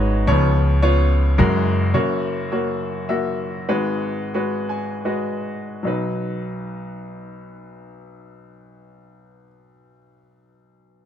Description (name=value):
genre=acoustic folk-pop ballad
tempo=70-109 BPM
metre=3/4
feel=straight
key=B major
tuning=A4 = 440 Hz
part: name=bright baby grand piano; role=melody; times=0.0-11.1 s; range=F#1 to G#5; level=-21 LUFS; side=left 1 dB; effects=none
part: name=felt-muted upright piano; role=arpeggios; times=0.0-0.8 s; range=D#4 to F#5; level=-31 LUFS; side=right 3 dB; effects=none
part: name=upright bass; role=bass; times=0.0-1.9 s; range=G#1 to F#2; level=-17 LUFS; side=equal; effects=none
room=little or no reverb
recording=close, detailed microphones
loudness=-19 LUFS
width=side -9 dB against mid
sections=0.0-1.9 A section; 1.9-5.9 B section; 5.9-11.0 C section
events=slowing down 1.9-5.9; grand piano fill 4.3-5.9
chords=0.3 C#7; 1.4 F#add9; 1.9 F#; 3.7 G#m7; 5.9 B